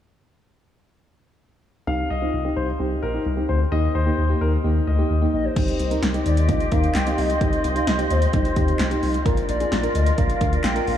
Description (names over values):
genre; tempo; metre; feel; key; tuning
synth-pop; 130 BPM; 4/4; straight; C minor; A4 = 440 Hz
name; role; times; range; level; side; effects
warm concert grand piano; second line; 1.9-5.2 s; Bb4 to F5; -30 LUFS; left 3 dB; diffuse ambient delay
mellow FM electric piano; accompaniment; 1.9-11.0 s; Bb3 to Bb4; -26 LUFS; right 1 dB; chorus, low-pass filter
round analog bass; bass; 1.9-11.0 s; Bb1 to Eb2; -22 LUFS; left 1 dB; none
hollow clarinet-like synth lead; melody; 5.3-11.0 s; C5 to G5; -28 LUFS; left 3 dB; chorus, diffuse ambient delay
flute section; sustained chords; 5.6-11.0 s; C4 to Eb5; -27 LUFS; right 1 dB; none
deep house drum kit; drums; 5.6-11.0 s; crash cymbal, handclaps, hi-hat, kick drum, snare drum; -24 LUFS; equal; overdrive
room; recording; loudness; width
moderate cathedral reverb, RT60 5.5 s; dreamy mix soaked in reverb; -19 LUFS; side -10 dB against mid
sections
1.9-5.6 A section; 5.6-11.0 B section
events
filter sweep on FM electric piano 1.9-5.6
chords
1.9 Cm; 3.7 Eb; 5.6 Cm; 9.3 Bb